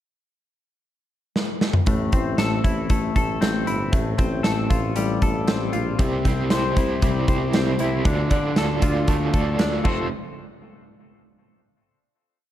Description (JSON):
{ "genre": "jangly indie pop", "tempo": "117 BPM", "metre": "4/4", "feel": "straight", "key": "F major", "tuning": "A4 = 440 Hz", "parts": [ { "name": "big rock drum kit", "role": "drums", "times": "1.4-10.0 s", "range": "crash cymbal, hi-hat, kick drum, snare drum, toms", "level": "-22 LUFS", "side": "equal", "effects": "none" }, { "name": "twelve-string electric guitar", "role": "arpeggios", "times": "1.9-10.1 s", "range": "A2 to C5", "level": "-25 LUFS", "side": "left 3 dB", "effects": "lush chorus" }, { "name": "mellow tuba", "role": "bass", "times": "1.9-10.1 s", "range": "F1 to D2", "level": "-26 LUFS", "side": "equal", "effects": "none" }, { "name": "overdriven electric guitar", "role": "accompaniment", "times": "6.0-10.1 s", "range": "C3 to D5", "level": "-27 LUFS", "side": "right 5 dB", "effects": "tremolo" } ], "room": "light reverb", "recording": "none", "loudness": "-19 LUFS", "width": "side -12 dB against mid", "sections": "0.0-1.9 pickup bar; 1.9-10.1 verse; 10.1-12.2 final hit", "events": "drum fill 1.4-1.9", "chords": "0.0 N.C.; 1.9 Am; 3.9 Fadd9/A; 6.0 C; 8.1 Dm; 9.8 F; 10.1 N.C." }